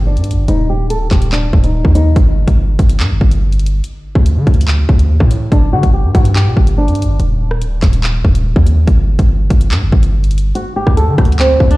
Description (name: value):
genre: hip hop, drill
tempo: 143 BPM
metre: 4/4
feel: half-time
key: unclear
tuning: A4 = 440 Hz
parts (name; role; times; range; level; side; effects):
- flamenco guitar; melody; 0.0-2.1, 5.5-7.2, 10.6-11.8 s; C4 to A4; -18 LUFS; equal; low-pass filter, ping-pong delay
- hard-hitting 808-style bass; bass; 0.0-11.8 s; D1 to D3; -12 LUFS; equal; none
- drill drum kit; drums; 0.2-11.8 s; handclaps, hi-hat, kick drum, rim click; -12 LUFS; equal; none
room: little or no reverb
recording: played on a big sound system in a bare room, large studio reverb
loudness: -10 LUFS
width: side -19 dB against mid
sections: 0.0-11.8 A section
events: filter sweep on nylon-string guitar 0.0-11.8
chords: 0.5 Eb; 2.2 N.C.; 3.8 D5; 5.5 G5; 7.2 N.C.; 10.6 D5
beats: 0.06 | 0.48 0.90 1.32 1.74 | 2.16 2.58 3.00 3.42 | 3.84 4.26 4.68 5.10 | 5.52 5.94 6.36 6.78 | 7.20 7.62 8.04 8.46 | 8.87 9.29 9.71 10.13 | 10.55 10.97 11.39